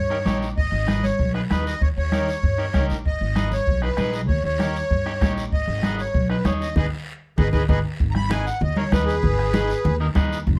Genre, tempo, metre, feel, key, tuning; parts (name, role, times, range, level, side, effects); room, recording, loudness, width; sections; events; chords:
latin, cumbia; 194 BPM; 4/4; straight; G# harmonic minor; A4 = 438 Hz
accordion; melody; 0.0-10.6 s; G#4 to B5; -28 LUFS; equal; light tremolo tuning
upright bass; bass; 0.0-10.6 s; F#1 to G2; -27 LUFS; equal
electric guitar at the edge of break-up; accompaniment; 0.1-10.4 s; D#4 to C#5; -32 LUFS; equal
bombo; percussion; 0.1-10.6 s; -26 LUFS; equal
congas; percussion; 0.3-10.6 s; -28 LUFS; equal
guiro; percussion; 0.3-10.6 s; -43 LUFS; equal
light reverb; dark, warm production; -22 LUFS; mono
0.0-8.0 A section; 8.0-10.6 B section
drum fill 6.8-8.0; band accent 6.8-8.0; accordion solo 8.0-10.6
0.0 D#7; 0.6 G#m; 1.8 D#7; 3.0 G#m; 4.3 D#7; 5.5 G#m